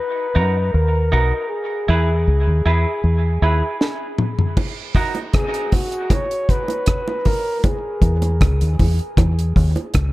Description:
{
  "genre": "dub reggae",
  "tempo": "78 BPM",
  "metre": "4/4",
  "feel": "straight",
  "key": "Eb phrygian",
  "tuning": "A4 = 440 Hz",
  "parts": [
    { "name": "breathy flugelhorn", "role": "melody", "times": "0.0-8.8 s", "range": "Gb4 to Db5", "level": "-24 LUFS", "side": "left 1 dB", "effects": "dub echo" },
    { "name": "semi-hollow electric guitar", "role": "accompaniment", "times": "0.3-5.2 s", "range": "Eb4 to B4", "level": "-26 LUFS", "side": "right 3 dB", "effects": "dub echo" },
    { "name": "deep dub fingered electric bass", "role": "bass", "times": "0.4-10.1 s", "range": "Cb2 to Gb2", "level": "-16 LUFS", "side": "equal", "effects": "none" },
    { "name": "deep reggae drum kit", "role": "drums", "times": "3.8-10.1 s", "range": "crash cymbal, hi-hat, kick drum, rim click, snare drum, toms", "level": "-18 LUFS", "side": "equal", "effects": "none" },
    { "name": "bongos", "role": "percussion", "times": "4.6-9.9 s", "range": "none", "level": "-30 LUFS", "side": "right 4 dB", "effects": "high-pass filter on perc, dub echo" }
  ],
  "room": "light reverb, small room ambience",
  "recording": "echo-heavy mix",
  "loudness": "-16 LUFS",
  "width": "side -18 dB against mid",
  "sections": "0.0-4.6 A section; 4.6-10.1 B section",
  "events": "drum fill 3.8-4.6; stop 3.8-4.6",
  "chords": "0.0 Ebm; 1.5 E; 4.6 Ebm; 7.6 E"
}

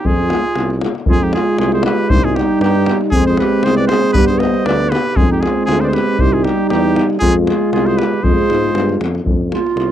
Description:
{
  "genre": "balkan folk, Balkan brass band",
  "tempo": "118 BPM",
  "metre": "2/4",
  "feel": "swing 55% on 16ths",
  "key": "F dorian sharp4",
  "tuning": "A4 = 440 Hz",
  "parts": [
    { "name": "bright trumpet", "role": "melody", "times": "0.0-9.0 s", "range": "G4 to Eb5", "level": "-21 LUFS", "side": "equal", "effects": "none" },
    { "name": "warm clarinet", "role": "second line", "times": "0.0-9.9 s", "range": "Eb4 to C5", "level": "-21 LUFS", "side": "right 8 dB", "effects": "none" },
    { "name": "warm tuba", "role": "bass", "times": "0.0-9.9 s", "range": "C2 to Ab2", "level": "-18 LUFS", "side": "left 1 dB", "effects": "none" },
    { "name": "davul", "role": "percussion", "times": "0.1-9.9 s", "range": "none", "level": "-19 LUFS", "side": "left 2 dB", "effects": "none" },
    { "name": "dark euphonium", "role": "accompaniment", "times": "0.3-9.6 s", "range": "G3 to Ab3", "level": "-19 LUFS", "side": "right 7 dB", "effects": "none" },
    { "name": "mellow French horn", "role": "accompaniment", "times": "0.3-9.6 s", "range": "B3 to F4", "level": "-20 LUFS", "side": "left 7 dB", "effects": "none" }
  ],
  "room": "little or no reverb",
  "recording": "dry, close 1970s-style studio recording",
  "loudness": "-12 LUFS",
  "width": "side -10 dB against mid",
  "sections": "0.0-1.1 A section; 1.1-9.3 A section",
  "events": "none",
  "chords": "0.0 Fm; 2.1 Cm; 3.1 Fm; 4.2 G; 5.2 Fm; 6.2 Cm; 7.2 Fm"
}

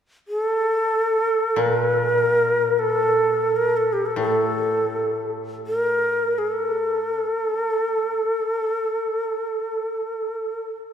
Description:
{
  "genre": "japanese traditional, Japanese chamber music",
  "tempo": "free time",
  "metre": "none",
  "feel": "none",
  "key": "unclear",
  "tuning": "A4 = 443 Hz",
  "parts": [
    { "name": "breathy shakuhachi", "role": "melody", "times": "0.3-10.7 s", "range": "G4 to Bb4", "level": "-20 LUFS", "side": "equal", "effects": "none" },
    { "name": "koto", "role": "accompaniment", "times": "1.6-7.2 s", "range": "A2 to Bb2", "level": "-29 LUFS", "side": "left 3 dB", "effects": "none" }
  ],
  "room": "wet cathedral reverb, RT60 4.2 s",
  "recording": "recorded in a church or concert hall",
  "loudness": "-20 LUFS",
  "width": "side -8 dB against mid",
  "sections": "0.0-10.9 A section",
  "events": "none",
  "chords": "none"
}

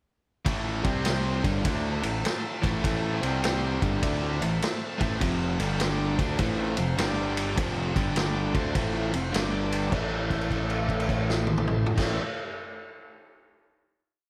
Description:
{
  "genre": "blues rock power trio and southern rock",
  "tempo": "102 BPM",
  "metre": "4/4",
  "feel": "swing 65% on 8ths",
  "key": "A minor",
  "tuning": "A4 = 441 Hz",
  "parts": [
    { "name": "cranked stack guitar", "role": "riff", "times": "0.5-12.2 s", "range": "F2 to D4", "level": "-32 LUFS", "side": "equal", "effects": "overdrive" },
    { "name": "modern bright picked electric bass", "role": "bass", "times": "0.5-12.2 s", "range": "F1 to D2", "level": "-34 LUFS", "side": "equal", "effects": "none" },
    { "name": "vintage drum kit", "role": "drums", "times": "0.5-12.1 s", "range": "crash cymbal, kick drum, ride cymbal, snare drum, toms", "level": "-31 LUFS", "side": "equal", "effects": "none" },
    { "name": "overdriven tonewheel organ", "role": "sustained chords", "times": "0.9-12.2 s", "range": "C4 to D5", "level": "-40 LUFS", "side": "equal", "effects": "none" }
  ],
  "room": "moderate lush hall reverb, RT60 2.5 s",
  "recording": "big arena sound",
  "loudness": "-27 LUFS",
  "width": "mono",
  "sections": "0.5-9.9 riff; 9.9-12.3 final chord",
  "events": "held note 9.9-11.9",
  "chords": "0.5 A5; 0.8 C5; 1.4 Am; 3.1 C5; 3.7 Am; 5.2 F5; 5.5 G5; 6.1 F5; 7.0 G5; 7.6 F5; 7.9 G5; 8.5 F5; 9.3 G5; 9.9 Am"
}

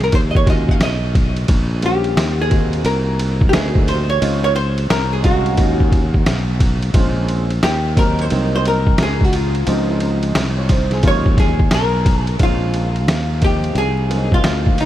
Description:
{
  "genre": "hip hop, jazz-hop",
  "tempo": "88 BPM",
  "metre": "4/4",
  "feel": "swing 65% on 16ths",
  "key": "unclear",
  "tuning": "A4 = 440 Hz",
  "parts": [
    { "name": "archtop guitar, miked and amplified", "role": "melody", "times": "0.0-14.9 s", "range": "Eb4 to F5", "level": "-21 LUFS", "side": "left 1 dB", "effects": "lush chorus, ping-pong delay" },
    { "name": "sustaining fretless electric bass", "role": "bass", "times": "0.0-14.9 s", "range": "Bb1 to Eb2", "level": "-19 LUFS", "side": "equal", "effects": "none" },
    { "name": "trip hop sampler-style drum kit", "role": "drums", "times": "0.0-14.9 s", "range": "hi-hat, kick drum, ride cymbal, snare drum", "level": "-18 LUFS", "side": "equal", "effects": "none" },
    { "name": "warm upright piano", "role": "accompaniment", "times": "0.5-14.9 s", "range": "F3 to F5", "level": "-25 LUFS", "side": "right 2 dB", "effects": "lush chorus" }
  ],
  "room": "light reverb",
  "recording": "vinyl crackle",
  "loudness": "-14 LUFS",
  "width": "side -13 dB against mid",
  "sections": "0.0-12.4 A section; 12.4-14.9 B section",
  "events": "hollow-body jazz guitar solo 0.0-12.4",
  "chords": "0.1 Ebm11; 1.5 Bbm; 2.2 Eb5; 2.9 Cm9b5; 4.2 Dbmaj7; 5.6 Ebm11; 6.9 Bbm7; 7.6 Eb6; 8.3 Ebm13/C; 9.7 Dbmaj7; 11.0 Ebm11; 12.4 Bbm7; 13.1 Eb69; 13.8 Cm9b5"
}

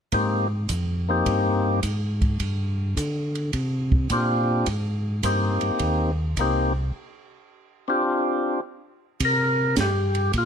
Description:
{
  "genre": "soul jazz organ trio",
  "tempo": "106 BPM",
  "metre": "4/4",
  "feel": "swing 68% on 8ths",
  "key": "unclear",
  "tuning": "A4 = 441 Hz",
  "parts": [
    { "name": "percussive tonewheel organ", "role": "melody", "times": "0.1-10.5 s", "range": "Bb3 to Bb4", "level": "-23 LUFS", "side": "left 2 dB", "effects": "slow rotary speaker" },
    { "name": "mellow tonewheel organ", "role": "bass", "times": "0.1-10.5 s", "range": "C2 to D3", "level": "-24 LUFS", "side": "equal", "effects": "chorus vibrato, slow rotary speaker" },
    { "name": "compact cocktail drum kit", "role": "drums", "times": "0.1-10.5 s", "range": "hi-hat, kick drum, ride cymbal, snare drum", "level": "-28 LUFS", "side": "right 1 dB", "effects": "none" }
  ],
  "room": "little or no reverb",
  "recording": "lossy compression artefacts",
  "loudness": "-21 LUFS",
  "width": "side -7 dB against mid",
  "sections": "0.1-9.2 A section; 9.2-10.5 B section",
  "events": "break 6.9-9.2",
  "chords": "0.1 Abmaj7; 2.4 G7sus4; 4.7 Abmaj7; 6.9 G7sus4; 9.2 C7(no3)"
}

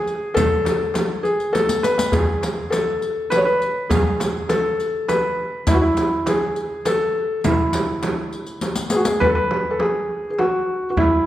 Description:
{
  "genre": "Persian modal ensemble",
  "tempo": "102 BPM",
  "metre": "3/4",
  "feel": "straight",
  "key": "E dastgah mahur",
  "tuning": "A4 = 440 Hz",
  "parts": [
    { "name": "felt-muted upright piano", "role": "melody", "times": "0.0-11.3 s", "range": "E4 to C#5", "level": "-20 LUFS", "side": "equal", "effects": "none" },
    { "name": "riq", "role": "percussion", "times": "0.1-9.2 s", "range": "none", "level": "-29 LUFS", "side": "left 3 dB", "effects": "none" },
    { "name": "tombak", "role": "percussion", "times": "0.1-11.1 s", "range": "none", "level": "-26 LUFS", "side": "left 1 dB", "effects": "none" },
    { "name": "frame drum", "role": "percussion", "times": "0.4-11.1 s", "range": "none", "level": "-25 LUFS", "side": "right 2 dB", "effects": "none" }
  ],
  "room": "wet recital hall reverb, RT60 1.5 s",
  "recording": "none",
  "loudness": "-18 LUFS",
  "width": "side -13 dB against mid",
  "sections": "0.0-9.2 A section; 9.2-11.3 B section",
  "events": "drum fill 1.5-2.1, 8.6-9.2",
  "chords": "none"
}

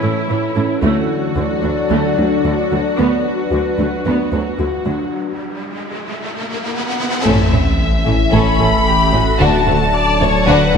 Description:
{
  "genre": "cinematic",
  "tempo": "112 BPM",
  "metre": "4/4",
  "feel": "straight",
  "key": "unclear",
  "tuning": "A4 = 440 Hz",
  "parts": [
    { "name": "rich symphonic viola section", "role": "accompaniment", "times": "0.0-5.1, 8.3-10.8 s", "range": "D3 to D5", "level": "-21 LUFS", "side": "right 1 dB", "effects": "none" },
    { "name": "warbly tape-like pad", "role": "sustained chords", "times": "0.0-10.8 s", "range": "E3 to E5", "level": "-20 LUFS", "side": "equal", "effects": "chorus, built-in reverb" },
    { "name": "harp-like synth pluck", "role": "arpeggios", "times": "0.0-10.8 s", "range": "D3 to B4", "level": "-22 LUFS", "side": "left 3 dB", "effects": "chorus, phaser, ping-pong delay" },
    { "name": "rich symphonic cello section", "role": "bass", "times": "0.0-10.8 s", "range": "D2 to A2", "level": "-21 LUFS", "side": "right 2 dB", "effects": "none" },
    { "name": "riser and sub drop", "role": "sound effects", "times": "5.1-9.4 s", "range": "none", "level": "-22 LUFS", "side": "equal", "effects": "none" },
    { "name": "rich symphonic violin section", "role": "melody", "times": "6.7-10.8 s", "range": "E5 to B5", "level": "-18 LUFS", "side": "left 4 dB", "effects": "none" },
    { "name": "clear symphonic violin section", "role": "second line", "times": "7.3-10.8 s", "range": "A3 to A4", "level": "-20 LUFS", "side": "left 3 dB", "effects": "none" },
    { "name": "rich chamber double bass section", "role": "bass", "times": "7.3-10.8 s", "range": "A1 to D2", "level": "-21 LUFS", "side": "right 5 dB", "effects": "none" },
    { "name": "saturated sub bass", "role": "bass", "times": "7.3-10.8 s", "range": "D1 to A1", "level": "-20 LUFS", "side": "equal", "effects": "none" }
  ],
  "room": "moderate scoring stage reverb, RT60 1.9 s",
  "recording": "none",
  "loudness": "-13 LUFS",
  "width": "side -6 dB against mid",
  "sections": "0.0-7.3 A section; 7.3-10.8 B section",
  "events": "build-up 0.0-7.3; riser 5.1-7.3; break 5.1-7.3; impact 7.3-9.4",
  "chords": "0.0 A; 0.8 D; 3.0 Bm/D; 5.1 N.C.; 7.3 A; 9.4 D"
}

